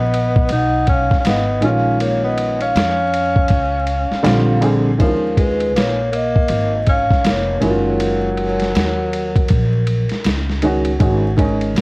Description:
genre	hip hop, jazz-hop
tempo	80 BPM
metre	4/4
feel	swing 62% on 16ths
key	G# dorian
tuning	A4 = 442 Hz
part	vibraphone with soft mallets	melody	0.0-11.8 s	A#4 to F#5	-20 LUFS	equal	slapback echo, plate reverb
part	mellow tenor saxophone	second line	0.0-10.2 s	E#3 to D#4	-22 LUFS	left 1 dB	plate reverb
part	upright bass	bass	0.0-11.8 s	E#1 to E#2	-20 LUFS	equal	transformer saturation
part	lo-fi sampler-style drum kit	drums	0.1-11.8 s	hi-hat, kick drum, ride cymbal, snare drum	-19 LUFS	equal	none
part	dark upright piano	accompaniment	1.6-11.8 s	D3 to G#4	-18 LUFS	right 1 dB	plate reverb
room	moderate studio reverb, RT60 0.6 s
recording	worn, warbling old tape, cassette tape, vinyl crackle, warbly pitch drift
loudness	-14 LUFS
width	side -26 dB against mid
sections	0.0-11.0 A section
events	none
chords	0.0 G#m7; 1.6 A#m7; 4.3 A#13; 5.0 D#9sus4; 7.6 F#6; 11.0 G#7(no3)

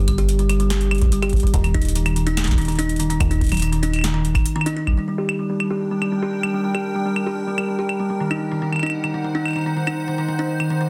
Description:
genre	IDM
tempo	144 BPM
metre	4/4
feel	straight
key	G harmonic minor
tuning	A4 = 440 Hz
part	kalimba	arpeggios	0.0-10.9 s	Eb3 to G4	-25 LUFS	equal	vintage 12-bit sampler grit, low-pass filter, digital delay
part	metallic FM bass	bass	0.0-4.5 s	Eb1 to G1	-23 LUFS	equal	none
part	booming analog drum machine	drums	0.1-10.7 s	claves, hi-hat, snare drum, toms	-29 LUFS	equal	digital delay
part	electronic kick drum	drums	0.1-5.0 s	none	-22 LUFS	equal	none
part	icy glass pad	sustained chords	4.9-10.9 s	Eb3 to G5	-30 LUFS	equal	chorus, built-in reverb
room	light reverb, digital ambience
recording	dense, heavily limited modern master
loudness	-21 LUFS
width	mono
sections	0.0-4.9 A section; 4.9-10.9 B section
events	break 4.5-4.9; filter sweep on kalimba 4.9-10.9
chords	0.0 N.C.; 4.9 Gm; 8.2 Ebm6

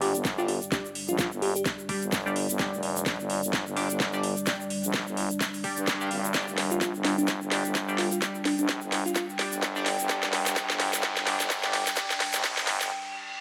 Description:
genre	bass house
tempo	128 BPM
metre	4/4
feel	swing 58% on 16ths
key	unclear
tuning	A4 = 440 Hz
part	dark analog pad	sustained chords	0.0-13.4 s	G3 to G5	-36 LUFS	equal	chorus, sidechain pumping
part	band-passed chord stab	stabs	0.0-12.1 s	G3 to F5	-36 LUFS	equal	phaser, subtle chorus, sidechain pumping, tape echo
part	growling FM bass	bass	0.0-12.9 s	F1 to G2	-35 LUFS	equal	tube saturation, sidechain pumping, high-pass filter
part	garage drum kit	drums	0.0-12.9 s	hi-hat, snare drum	-32 LUFS	equal	high-pass filter on hats, high-pass filter on snare
part	egg shaker	percussion	0.1-12.9 s	none	-38 LUFS	equal	none
part	electronic kick drum	drums	0.2-12.5 s	none	-35 LUFS	equal	high-pass filter on kick
part	bell-like FM electric piano	melody	0.4-1.6, 6.7-9.2 s	D4 to G4	-34 LUFS	equal	chorus, tape echo
part	riser and reverse cymbal	sound effects	9.1-13.4 s	none	-40 LUFS	equal	none
room	moderate digital room reverb, RT60 1.3 s, digital ambience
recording	high-pass filter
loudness	-28 LUFS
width	mono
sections	0.0-13.4 A section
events	build-up 0.0-13.4; drum fill 0.0-12.9; filter sweep 0.0-13.4; break 12.9-13.4; reverse cymbal 12.9-13.4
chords	0.0 G5

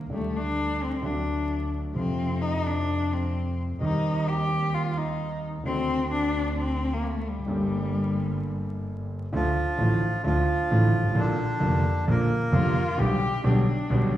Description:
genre	tango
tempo	131 BPM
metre	4/4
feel	rubato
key	G minor, D minor from 9.3 s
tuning	A4 = 440 Hz
part	dark concert grand piano	accompaniment	0.0-14.1 s	F1 to G4	-27 LUFS	right 1 dB	none
part	dark double bass	bass	0.0-14.1 s	F1 to F2	-30 LUFS	equal	none
part	warm cello	second line	0.1-8.9, 12.5-14.2 s	G3 to G4	-29 LUFS	left 3 dB	none
part	bandoneon	melody	9.3-13.0 s	D3 to Bb4	-28 LUFS	equal	none
room	wet recital hall reverb, RT60 1.4 s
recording	recorded in a church or concert hall, vinyl crackle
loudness	-23 LUFS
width	side -12 dB against mid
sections	0.0-9.3 A section; 9.3-14.2 B section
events	cello solo 0.0-9.3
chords	0.1 Dsus4; 1.0 D; 2.0 F; 3.8 Cm/Eb; 5.6 D7; 7.5 Gmadd9; 9.3 Dm; 11.2 Bb; 13.0 G/B

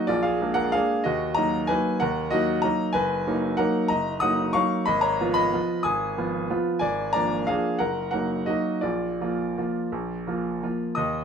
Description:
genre	classical, piano waltz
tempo	162-198 BPM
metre	3/4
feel	rubato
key	unclear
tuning	A4 = 441 Hz
part	bright upright piano	solo	0.0-11.2 s	Gb1 to Eb6	-22 LUFS	equal	none
room	light reverb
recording	minimal, uncompressed stereo recording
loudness	-22 LUFS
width	side -7 dB against mid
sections	0.0-11.0 A section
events	none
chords	0.1 A#7; 1.1 D#m; 3.0 Ebm/Gb; 4.9 Fm7b5/Ab; 6.8 Bb7/Ab; 7.8 Ebm/Gb; 8.8 Bb

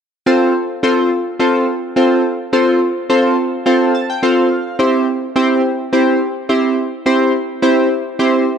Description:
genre	pop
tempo	106 BPM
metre	4/4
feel	straight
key	F major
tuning	A4 = 441 Hz
part	chorused retro synth keys	accompaniment	0.3-8.5 s	C4 to A5	-12 LUFS	equal	none
room	moderate plate reverb, RT60 3.1 s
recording	dark, warm production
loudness	-13 LUFS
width	side -7 dB against mid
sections	0.3-8.6 A section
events	synth keys fill 3.7-4.8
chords	0.3 F; 4.8 C

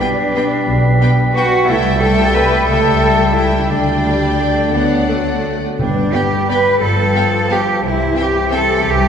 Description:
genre	classical, orchestral ballroom waltz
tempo	176 BPM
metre	3/4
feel	uneven beats, rubato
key	G major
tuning	A4 = 440 Hz
part	rich chamber violin section	melody	0.0-8.6 s	F#5 to G5	-26 LUFS	left 4 dB	none
part	dark clarinet	second line	0.0-9.1 s	B4 to E5	-26 LUFS	left 2 dB	none
part	mellow hollow large flute ensemble	second line	0.0-9.1 s	D5 to B5	-24 LUFS	left 2 dB	none
part	rich chamber violin section	second line	0.0-8.6 s	B4 to F5	-27 LUFS	left 5 dB	none
part	warm oboe	second line	0.0-9.1 s	G5 to B5	-25 LUFS	equal	none
part	rich chamber viola section	accompaniment	0.0-8.6 s	G3 to C4	-24 LUFS	right 2 dB	none
part	warm bassoon	accompaniment	0.0-9.1 s	E3 to G3	-23 LUFS	right 1 dB	none
part	mellow French horn section	sustained chords	0.0-9.1 s	E3 to B4	-26 LUFS	left 3 dB	none
part	concert harp	arpeggios	0.0-9.1 s	G2 to B5	-22 LUFS	left 4 dB	none
part	rich chamber cello section	bass	0.0-9.1 s	D4 to B4	-18 LUFS	right 2 dB	none
part	rich chamber double bass section	bass	0.7-9.1 s	G1 to D2	-19 LUFS	right 1 dB	none
part	timpani	percussion	5.8-6.3 s	G2	-25 LUFS	left 1 dB	none
room	wet church reverb, RT60 2.6 s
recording	recorded in a church or concert hall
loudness	-12 LUFS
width	side -7 dB against mid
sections	0.0-9.1 A section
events	none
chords	0.0 G/B; 1.7 Am7/C; 2.7 A7/C#; 3.7 Dsus4; 4.7 D; 5.8 G; 6.8 G7; 7.8 C

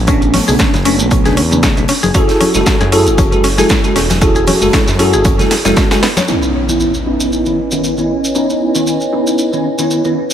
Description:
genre	deep house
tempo	116 BPM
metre	4/4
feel	swing 55% on 16ths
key	C# minor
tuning	A4 = 440 Hz
part	smooth synth bass	bass	0.0-5.7 s	E1 to F#2	-17 LUFS	equal	sidechain pumping
part	mallet-like synth pluck	arpeggios	0.1-6.2 s	C#3 to C#5	-19 LUFS	left 3 dB	chorus, sidechain pumping, analog delay
part	bell-like tine electric piano	stabs	0.1-10.2 s	C#3 to A4	-14 LUFS	equal	ensemble chorus, sidechain pumping, low-pass filter, analog delay
part	big rock drum kit	drums	0.1-6.3 s	hi-hat, snare drum	-24 LUFS	right 2 dB	high-pass filter on hats, high-pass filter on snare, high-pass filter on room
part	electronic kick drum	drums	0.1-5.9 s	none	-14 LUFS	equal	none
part	punchy analog drum machine	drums	0.1-6.3 s	hi-hat, snare drum	-19 LUFS	right 1 dB	low-pass filter on hats, low-pass filter on snare
part	maracas	percussion	0.1-10.3 s	none	-23 LUFS	right 1 dB	none
part	congas	percussion	0.3-6.3 s	none	-22 LUFS	left 4 dB	sidechain pumping on perc
part	warbly tape-like pad	sustained chords	7.1-10.3 s	C#4 to G#5	-20 LUFS	right 1 dB	chorus, built-in reverb, sidechain pumping
part	impact	sound effects	6.3-8.4 s	none	-22 LUFS	equal	none
room	moderate plate reverb, RT60 1.9 s, small room ambience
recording	dreamy mix soaked in reverb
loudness	-10 LUFS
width	side -10 dB against mid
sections	0.0-6.3 A section; 6.3-10.3 B section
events	drum fill 5.5-6.3; impact 6.3-8.4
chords	0.0 Bm9; 2.1 F#m9; 6.3 C#m9

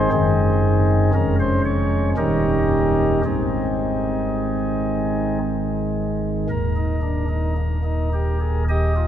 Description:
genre	classical, chorale-style piece for pipe organ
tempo	52-60 BPM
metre	3/4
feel	rubato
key	Ab major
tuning	A4 = 443 Hz
part	pipe organ, flutes	solo	0.0-9.1 s	Eb1 to Eb5	-18 LUFS	equal	none
room	wet cathedral reverb, RT60 5.7 s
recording	recorded in a church or concert hall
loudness	-18 LUFS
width	side -10 dB against mid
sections	0.0-6.5 A section; 6.5-9.1 B section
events	none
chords	0.1 Ab7/Gb; 1.1 Db/F; 2.2 Eb7; 3.2 Ab; 6.5 Eb

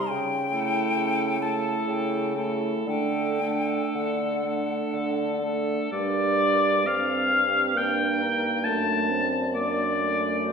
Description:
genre	classical, slow romantic movement for wind quintet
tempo	55-72 BPM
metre	3/4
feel	rubato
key	G minor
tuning	A4 = 441 Hz
part	hollow concert flute	melody	0.0-10.5 s	G4 to C6	-32 LUFS	left 4 dB	none
part	clear oboe	second line	0.0-10.5 s	A4 to A5	-26 LUFS	left 2 dB	none
part	dark clarinet	accompaniment	0.0-10.5 s	C4 to F#4	-31 LUFS	right 8 dB	none
part	mellow French horn	accompaniment	0.0-10.5 s	G3 to C4	-30 LUFS	right 1 dB	none
part	dark bassoon	bass	0.1-10.5 s	F#2 to D3	-30 LUFS	equal	none
room	wet scoring stage reverb, RT60 1.6 s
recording	heard from further back in the room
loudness	-23 LUFS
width	side -6 dB against mid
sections	0.0-5.9 A section; 5.9-10.5 B section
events	none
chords	0.1 A7/C#; 2.9 D; 5.9 Gm; 8.7 D7/F#

